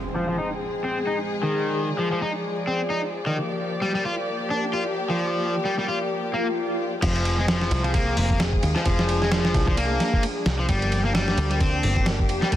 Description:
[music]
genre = breakbeat, breaks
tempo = 131 BPM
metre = 4/4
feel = swing 57% on 16ths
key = F dorian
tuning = A4 = 436 Hz
[part]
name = dark studio string section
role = sustained chords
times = 0.0-12.6 s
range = F3 to D5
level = -27 LUFS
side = left 1 dB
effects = vintage 12-bit sampler grit, sidechain pumping
[part]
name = impact and swell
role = sound effects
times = 0.0-1.5, 6.3-7.0 s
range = none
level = -32 LUFS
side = left 1 dB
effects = none
[part]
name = cranked stack guitar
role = riff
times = 0.2-12.6 s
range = Eb3 to F4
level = -26 LUFS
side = left 1 dB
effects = overdrive, vintage 12-bit sampler grit, low-pass filter, dub echo
[part]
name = overdriven picked electric bass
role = bass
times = 7.0-12.6 s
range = F1 to Eb2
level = -24 LUFS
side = equal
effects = none
[part]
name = dusty soul sampler-style drum kit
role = drums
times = 7.0-12.6 s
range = crash cymbal, hi-hat, kick drum, ride cymbal, snare drum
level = -24 LUFS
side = equal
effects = none
[sound]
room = light reverb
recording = dense, heavily limited modern master, vinyl crackle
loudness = -21 LUFS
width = side -12 dB against mid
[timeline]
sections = 0.0-7.0 A section; 7.0-12.6 B section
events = impact 0.0-1.5; swell 6.3-7.0; drop 7.0-12.6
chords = 0.0 Fm; 3.4 Gm7; 7.0 Fm; 10.7 Gm7

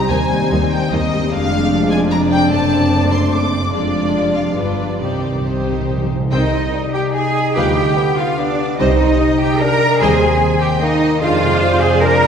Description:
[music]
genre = classical, dramatic, fast romantic movement for symphony orchestra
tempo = 147 BPM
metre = 3/4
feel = rubato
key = C minor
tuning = A4 = 440 Hz
[part]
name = warm symphonic violin section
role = melody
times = 0.0-12.3 s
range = C5 to D6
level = -23 LUFS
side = left 2 dB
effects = none
[part]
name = warm symphonic violin section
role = second line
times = 0.0-12.3 s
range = D4 to Bb5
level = -22 LUFS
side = left 1 dB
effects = none
[part]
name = warm symphonic viola section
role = accompaniment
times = 0.0-12.3 s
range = Eb3 to C5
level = -24 LUFS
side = right 2 dB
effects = none
[part]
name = dark French horn section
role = sustained chords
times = 0.0-11.4 s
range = Eb3 to D4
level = -22 LUFS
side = left 2 dB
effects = none
[part]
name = concert harp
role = arpeggios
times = 0.0-12.3 s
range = F2 to C6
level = -22 LUFS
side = left 5 dB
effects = none
[part]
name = rich symphonic cello section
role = bass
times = 0.0-12.3 s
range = Eb2 to Bb4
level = -19 LUFS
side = right 3 dB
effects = none
[part]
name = rich symphonic double bass section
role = bass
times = 0.1-12.3 s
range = F1 to F2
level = -22 LUFS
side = right 2 dB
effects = none
[part]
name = timpani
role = percussion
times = 5.0-6.9 s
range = C3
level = -24 LUFS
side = right 1 dB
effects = none
[part]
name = mellow bassoon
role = accompaniment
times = 6.7-12.3 s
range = G3 to Eb4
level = -21 LUFS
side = right 2 dB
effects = none
[sound]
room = wet scoring stage reverb, RT60 2.0 s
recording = heard from further back in the room, faint mains hum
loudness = -13 LUFS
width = side -7 dB against mid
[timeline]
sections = 0.0-6.3 A section; 6.3-12.3 A section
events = timpani fill 5.0-6.3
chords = 0.1 Cm/Eb; 1.3 Dm7b5/F; 2.5 D7/F#; 3.7 Ddim/F; 4.6 G7; 5.0 Cm; 7.6 G7/D; 8.8 Cm; 10.0 Cm/Eb; 11.2 Dm7b5/F

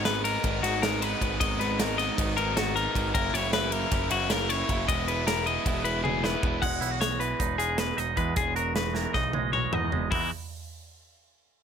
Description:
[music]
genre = math rock and midwest emo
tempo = 310 BPM (eighths)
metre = 9/8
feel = straight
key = E lydian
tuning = A4 = 440 Hz
[part]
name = clean electric guitar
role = arpeggios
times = 0.0-10.3 s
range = E4 to F#5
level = -29 LUFS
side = left 8 dB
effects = none
[part]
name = overdriven electric guitar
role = riff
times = 0.0-6.6 s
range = F#2 to E4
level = -30 LUFS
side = right 3 dB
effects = none
[part]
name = growling picked electric bass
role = bass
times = 0.0-10.3 s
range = E1 to E2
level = -32 LUFS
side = equal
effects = overdrive
[part]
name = modern studio drum kit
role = drums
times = 0.1-10.2 s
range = crash cymbal, hi-hat, kick drum, ride cymbal, snare drum, toms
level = -30 LUFS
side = equal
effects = none
[part]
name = twangy electric guitar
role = accompaniment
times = 6.6-10.3 s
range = E2 to F#4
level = -31 LUFS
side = right 15 dB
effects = none
[sound]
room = little or no reverb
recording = none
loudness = -24 LUFS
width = side -7 dB against mid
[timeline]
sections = 0.0-6.6 A section; 6.6-10.1 B section; 10.1-11.6 C section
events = drum fill 6.0-6.6, 9.0-10.1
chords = 0.0 G#m9; 3.1 F#7; 4.9 Emaj7; 6.6 Emaj9; 10.1 N.C.

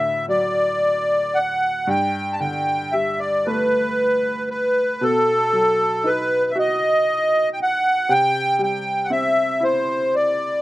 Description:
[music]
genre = celtic folk, Celtic slow air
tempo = 39 BPM (dotted quarters)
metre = 6/8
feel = rubato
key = unclear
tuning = A4 = 443 Hz
[part]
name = accordion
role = melody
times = 0.0-10.6 s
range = A4 to A5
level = -18 LUFS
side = equal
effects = light tremolo tuning, slapback echo
[part]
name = clear upright piano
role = accompaniment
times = 0.0-10.6 s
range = D2 to F#4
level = -27 LUFS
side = equal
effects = none
[sound]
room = little or no reverb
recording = recorded outdoors, with no room sound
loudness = -17 LUFS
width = side -16 dB against mid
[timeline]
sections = 0.0-10.6 A section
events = none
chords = 0.0 D; 1.9 Gsus2; 5.0 B; 8.1 C

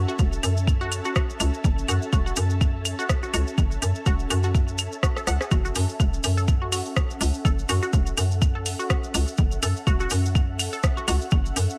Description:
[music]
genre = minimal techno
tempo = 124 BPM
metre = 4/4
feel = swing 56% on 16ths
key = F# minor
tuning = A4 = 440 Hz
[part]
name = hollow knocking FM bass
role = bass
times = 0.0-11.7 s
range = E1 to F#2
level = -27 LUFS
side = equal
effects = sidechain pumping
[part]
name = ethereal airy pad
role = texture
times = 0.0-11.8 s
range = C#4 to A5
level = -37 LUFS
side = equal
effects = ensemble chorus, built-in reverb, sidechain pumping
[part]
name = resonant blip pluck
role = riff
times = 0.1-11.1 s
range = F#4 to F#5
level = -34 LUFS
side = equal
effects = phaser, sidechain pumping, tape echo
[part]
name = maracas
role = percussion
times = 0.1-11.8 s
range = none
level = -37 LUFS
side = equal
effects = none
[part]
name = electronic kick drum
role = drums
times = 0.2-11.4 s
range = none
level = -24 LUFS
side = equal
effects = none
[part]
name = claves and congas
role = percussion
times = 0.2-11.7 s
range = none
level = -33 LUFS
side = equal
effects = tape echo
[part]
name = garage drum kit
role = drums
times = 0.4-11.7 s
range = hi-hat, rim click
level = -34 LUFS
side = equal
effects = none
[sound]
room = digital ambience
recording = none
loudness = -24 LUFS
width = mono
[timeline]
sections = 0.0-11.8 A section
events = drum fill 5.2-5.5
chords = 0.0 F#m7

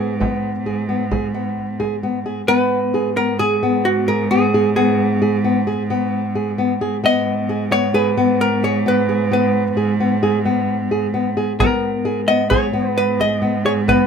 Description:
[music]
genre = contemporary instrumental, chamber music in an uneven meter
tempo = 132 BPM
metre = 5/4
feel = straight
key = G# minor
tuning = A4 = 444 Hz
[part]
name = vintage hollow-body jazz guitar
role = melody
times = 0.0-14.1 s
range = F#4 to D#5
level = -19 LUFS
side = right 1 dB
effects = none
[part]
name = flamenco guitar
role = arpeggios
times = 0.0-14.1 s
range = B3 to G#4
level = -20 LUFS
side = left 4 dB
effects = none
[part]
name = clear cello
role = bass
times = 0.0-14.1 s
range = G#2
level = -21 LUFS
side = right 4 dB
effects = none
[part]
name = frame drum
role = percussion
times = 0.2-2.0, 11.6-14.1 s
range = none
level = -22 LUFS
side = right 2 dB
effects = none
[sound]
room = light reverb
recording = close, detailed microphones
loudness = -16 LUFS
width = side -6 dB against mid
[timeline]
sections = 0.0-2.5 A section; 2.5-14.1 B section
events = none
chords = 0.0 G#m

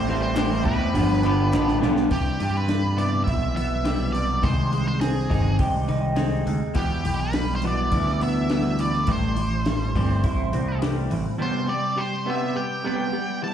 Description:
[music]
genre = indie rock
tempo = 103 BPM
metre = 4/4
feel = straight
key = C major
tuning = A4 = 441 Hz
[part]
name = octave-fuzz lead guitar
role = melody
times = 0.0-13.5 s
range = G4 to A5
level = -29 LUFS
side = right 1 dB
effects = distortion, slapback echo, analog delay
[part]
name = electric guitar through a small old amp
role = riff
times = 0.0-13.5 s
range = G2 to G4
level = -26 LUFS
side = right 4 dB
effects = lush chorus
[part]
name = twelve-string electric guitar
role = riff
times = 0.0-13.5 s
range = E2 to G4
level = -29 LUFS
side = left 7 dB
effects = slapback echo
[part]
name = growling picked electric bass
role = bass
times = 0.0-11.2 s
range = G1 to G2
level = -25 LUFS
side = equal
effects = overdrive
[part]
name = compact cocktail drum kit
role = drums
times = 0.4-11.2 s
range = hi-hat, kick drum, snare drum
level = -27 LUFS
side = left 1 dB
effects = none
[part]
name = group handclap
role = percussion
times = 0.4-1.7 s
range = none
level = -40 LUFS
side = left 2 dB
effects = none
[sound]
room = studio ambience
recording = live gig heard through the venue's PA, club reverb, lossy compression artefacts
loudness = -21 LUFS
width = side -9 dB against mid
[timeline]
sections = 0.0-2.1 A section; 2.1-11.4 B section; 11.4-13.5 C section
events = drum fill 1.5-2.1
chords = 0.0 Am7; 0.9 G7; 2.1 Cmaj7; 4.4 Abmaj7; 6.8 Em; 9.1 Am7; 11.4 Cmaj7(no3)

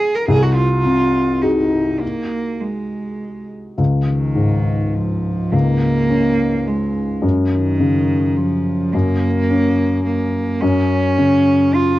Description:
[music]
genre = neoclassical piano and strings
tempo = 106 BPM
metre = 3/4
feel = rubato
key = unclear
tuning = A4 = 443 Hz
[part]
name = clear cello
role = second line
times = 0.0-12.0 s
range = D#3 to A#4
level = -20 LUFS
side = right 3 dB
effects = cassette tape
[part]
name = felt-muted upright piano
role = accompaniment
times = 0.0-12.0 s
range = B#1 to G#4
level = -16 LUFS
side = left 1 dB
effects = cassette tape
[sound]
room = light reverb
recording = home recording on cassette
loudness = -15 LUFS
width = side -16 dB against mid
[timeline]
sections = 0.0-3.8 A section; 3.8-12.0 B section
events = none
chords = 0.3 G#7/B#; 3.8 C#5; 7.2 F#

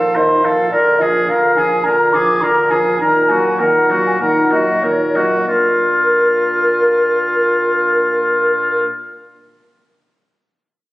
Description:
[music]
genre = quick classical-period movement for wind quintet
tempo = 91-108 BPM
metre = 4/4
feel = straight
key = unclear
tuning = A4 = 444 Hz
[part]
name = mellow hollow silver concert flute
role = melody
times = 0.0-8.8 s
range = Bb4 to D6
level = -19 LUFS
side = left 1 dB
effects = none
[part]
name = warm oboe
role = second line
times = 0.0-8.8 s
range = F4 to C5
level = -16 LUFS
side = left 1 dB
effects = none
[part]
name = warm French horn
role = accompaniment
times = 0.0-8.8 s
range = D3 to Bb3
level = -24 LUFS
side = equal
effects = none
[part]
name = warm clarinet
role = accompaniment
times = 0.0-8.8 s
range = Bb3 to F4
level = -27 LUFS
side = right 1 dB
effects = none
[part]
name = dark bassoon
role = bass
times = 0.0-8.8 s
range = Bb2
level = -18 LUFS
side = right 1 dB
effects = none
[sound]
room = moderate recital hall reverb, RT60 1.5 s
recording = recorded on a phone in the room, club reverb, nothing above 10.3 kHz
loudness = -12 LUFS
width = side -18 dB against mid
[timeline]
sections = 0.0-5.5 A section; 5.5-8.1 B section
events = slowing down 0.0-5.5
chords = 0.0 F7/Bb; 0.7 Bb7; 3.0 Ebm/Bb; 5.5 Bb

